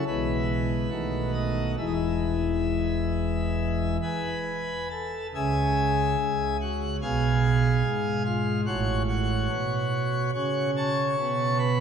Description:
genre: classical, chorale-style piece for pipe organ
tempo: 66-73 BPM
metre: 4/4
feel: rubato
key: E major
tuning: A4 = 440 Hz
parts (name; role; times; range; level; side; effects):
- pipe organ, plenum; solo; 0.0-11.8 s; E1 to C#6; -24 LUFS; equal; none
room: wet church reverb, RT60 3.5 s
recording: dark, warm production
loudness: -24 LUFS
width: side -7 dB against mid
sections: 0.0-5.3 A section; 5.3-11.8 B section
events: none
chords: 0.1 E/B; 0.9 B7; 1.8 E; 5.3 C#m; 7.0 Fdim/Cb; 8.7 F#m/A

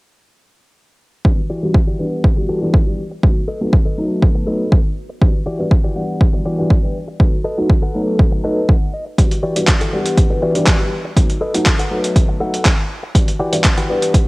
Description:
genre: filtered disco house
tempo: 121 BPM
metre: 4/4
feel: straight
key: E minor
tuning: A4 = 440 Hz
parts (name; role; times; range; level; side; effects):
- dark grand piano; accompaniment; 1.2-14.2 s; E3 to F#5; -21 LUFS; left 1 dB; phaser, sidechain pumping, low-pass filter, cassette tape
- electronic kick drum; drums; 1.2-14.2 s; none; -13 LUFS; equal; overdrive, small room ambience, cassette tape
- direct-recorded clean electric guitar; riff; 1.5-14.2 s; E3 to A5; -24 LUFS; left 1 dB; sidechain pumping, low-pass filter, cassette tape
- dusty soul sampler-style drum kit; drums; 9.2-14.2 s; handclaps, hi-hat; -20 LUFS; equal; overdrive, sidechain pumping on hats, small room ambience, cassette tape
room: little or no reverb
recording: home recording on cassette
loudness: -14 LUFS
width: side -23 dB against mid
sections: 1.3-14.3 A section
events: filter sweep 1.3-14.3; clean electric guitar fill 8.2-9.2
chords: 1.3 Em9; 3.2 B7; 5.2 Em9; 7.2 B7; 9.2 Em9; 11.2 B7; 13.2 Em9

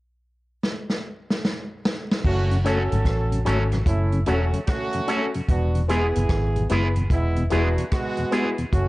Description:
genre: roots reggae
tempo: 74 BPM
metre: 4/4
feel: swing 65% on 16ths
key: F# minor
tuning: A4 = 440 Hz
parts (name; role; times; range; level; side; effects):
- vintage drum kit; drums; 0.6-8.9 s; crash cymbal, hi-hat, kick drum, rim click, snare drum; -26 LUFS; equal; vintage 12-bit sampler grit
- clear horn section; second line; 2.2-8.9 s; G#3 to A4; -27 LUFS; right 2 dB; none
- vintage muted fingered electric bass; bass; 2.2-8.9 s; E1 to A1; -22 LUFS; equal; none
- mellow tonewheel organ; accompaniment; 2.5-8.7 s; E2 to F#4; -28 LUFS; left 1 dB; chorus vibrato, slow rotary speaker
- warm upright piano; stabs; 2.6-8.5 s; B3 to A4; -29 LUFS; left 4 dB; none
- electric guitar with an envelope filter; accompaniment; 2.7-8.5 s; F#3 to G#4; -30 LUFS; right 2 dB; none
room: light reverb, small room ambience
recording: faint mains hum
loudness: -20 LUFS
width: side -19 dB against mid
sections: 0.0-2.2 A section; 2.2-8.9 B section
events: drum fill 0.6-2.2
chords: 0.0 N.C.; 2.2 F#m; 5.5 E

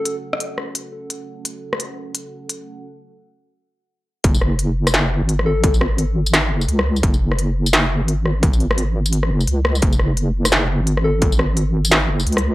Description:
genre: half-time drum and bass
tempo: 172 BPM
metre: 4/4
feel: swing 60% on 16ths, half-time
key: F# minor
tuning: A4 = 439 Hz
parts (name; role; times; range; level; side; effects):
- soft struck synth lead; melody; 0.0-0.2, 5.5-5.7, 11.0-11.3 s; A4; -26 LUFS; left 2 dB; chorus, analog delay
- dark analog pad; sustained chords; 0.0-2.8 s; C#4 to F#5; -34 LUFS; right 2 dB; chorus, phaser, sidechain pumping
- industrial drum kit; drums; 0.1-12.4 s; hi-hat, rim click, snare drum, tambourine; -20 LUFS; equal; none
- deep soft wobble bass; bass; 4.2-12.5 s; F#1 to C#2; -18 LUFS; equal; chorus, transformer saturation
- electronic kick drum; drums; 4.2-11.3 s; none; -17 LUFS; equal; distortion
room: little or no reverb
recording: dry, gritty hardware recording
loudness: -16 LUFS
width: side -17 dB against mid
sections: 0.0-4.2 A section; 4.2-12.5 B section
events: break 2.8-4.2; drop 4.2-12.5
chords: 0.0 F#m; 4.2 N.C.

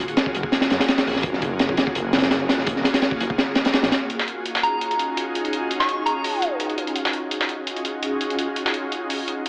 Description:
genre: drum and bass, jungle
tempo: 168 BPM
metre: 4/4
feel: swing 53% on 16ths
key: Eb minor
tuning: A4 = 440 Hz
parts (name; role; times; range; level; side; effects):
- ethereal airy pad; sustained chords; 0.0-9.5 s; Db4 to Ab4; -29 LUFS; equal; ensemble chorus, built-in reverb
- crunchy breakbeat drum kit; drums; 0.0-4.0 s; hi-hat, kick drum, snare drum; -22 LUFS; equal; none
- detuned saw bass; bass; 0.3-3.9 s; Gb1 to Gb2; -31 LUFS; equal; none
- dusty soul sampler-style drum kit; drums; 4.1-9.5 s; hi-hat, snare drum; -29 LUFS; equal; high-pass filter on hats, high-pass filter on snare, high-pass filter on room
- soft synth bell; melody; 4.6-6.4 s; Bb5 to Db6; -28 LUFS; equal; chorus, phaser, dub echo
room: moderate lush hall reverb, RT60 1.8 s, studio ambience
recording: vinyl crackle, AM radio sound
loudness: -23 LUFS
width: mono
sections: 0.0-4.1 A section; 4.1-9.5 B section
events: none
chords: 0.0 Gbmaj9; 4.1 Ebm11

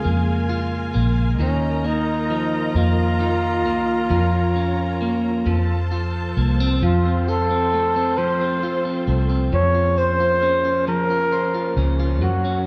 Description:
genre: six-eight pop ballad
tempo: 44 BPM (dotted quarters)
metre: 6/8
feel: straight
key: Bb minor, Bb harmonic minor from 6.8 s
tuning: A4 = 440 Hz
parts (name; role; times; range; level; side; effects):
- mellow flugelhorn; melody; 0.0-12.6 s; Db4 to Db5; -24 LUFS; equal; none
- electric guitar at the edge of break-up; accompaniment; 0.0-12.7 s; Db3 to C5; -26 LUFS; equal; spring reverb
- rich studio string section; sustained chords; 0.0-12.7 s; Db3 to Bb5; -32 LUFS; equal; none
- vintage muted fingered electric bass; bass; 0.1-12.7 s; Bb1 to Gb2; -24 LUFS; equal; none
room: moderate scoring stage reverb, RT60 1.5 s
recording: recorded in a church or concert hall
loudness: -20 LUFS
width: mono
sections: 0.0-6.8 A section; 6.8-12.7 B section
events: none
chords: 0.0 Bbm7; 1.4 Ebsus2; 4.1 Bbm/F; 5.5 F; 9.5 Bbmadd9/F

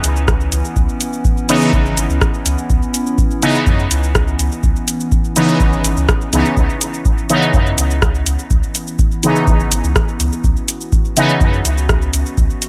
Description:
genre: dub techno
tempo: 124 BPM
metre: 4/4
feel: straight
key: C# minor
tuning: A4 = 440 Hz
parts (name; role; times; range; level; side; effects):
- warbly tape-like pad; sustained chords; 0.0-12.7 s; E3 to F#4; -27 LUFS; equal; chorus, built-in reverb, sidechain pumping
- soft dub sub bass; bass; 0.0-12.5 s; G#1 to F#2; -21 LUFS; equal; sidechain pumping
- booming analog drum machine; drums; 0.0-12.7 s; cabasa, hi-hat, rim click; -22 LUFS; equal; none
- electronic kick drum; drums; 0.3-12.5 s; none; -18 LUFS; equal; none
- resonant sweep polysynth; stabs; 1.5-11.3 s; C#3 to D#4; -20 LUFS; equal; chorus, phaser, sidechain pumping, dub echo
room: light reverb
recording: none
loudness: -15 LUFS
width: mono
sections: 0.0-12.7 A section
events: none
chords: 0.0 C#m7

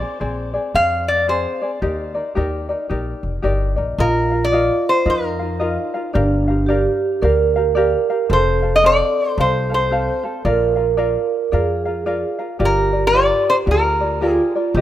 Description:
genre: Hawaiian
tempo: 111 BPM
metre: 4/4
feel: swing 62% on 8ths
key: unclear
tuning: A4 = 437 Hz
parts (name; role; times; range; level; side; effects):
- lap resonator guitar; melody; 0.0-14.5 s; Bb4 to F5; -18 LUFS; left 1 dB; none
- tenor ukulele; accompaniment; 0.0-14.8 s; C4 to F5; -23 LUFS; left 2 dB; none
- upright bass; bass; 0.2-14.8 s; F1 to F2; -22 LUFS; equal; none
- vibraphone with soft mallets; second line; 4.0-14.8 s; D4 to Bb4; -20 LUFS; right 5 dB; none
room: light reverb, studio reverb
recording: rough home demo mix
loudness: -16 LUFS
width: side -12 dB against mid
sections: 0.0-4.0 A section; 4.0-14.8 B section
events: none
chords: 0.0 Bb9; 1.8 Ebmaj7; 4.0 Bbsus4; 6.1 Gm7; 8.3 F; 10.5 Bb; 12.6 Gm7

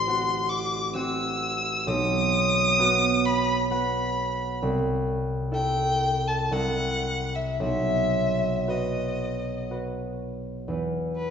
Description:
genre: classical, romantic duo for violin and harp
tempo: 54-70 BPM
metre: 3/4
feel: rubato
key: unclear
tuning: A4 = 438 Hz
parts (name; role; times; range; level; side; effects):
- rich violin; melody; 0.0-11.3 s; B4 to E6; -25 LUFS; left 2 dB; none
- concert harp; accompaniment; 0.0-11.3 s; A1 to F#5; -26 LUFS; right 1 dB; none
room: wet scoring stage reverb, RT60 1.6 s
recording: heard from further back in the room, nothing above 7.8 kHz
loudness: -23 LUFS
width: side -7 dB against mid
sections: 0.0-10.7 A section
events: none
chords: 0.0 F#dim/A; 1.9 B; 4.6 Am/C; 6.5 C7; 7.6 B; 10.7 E5

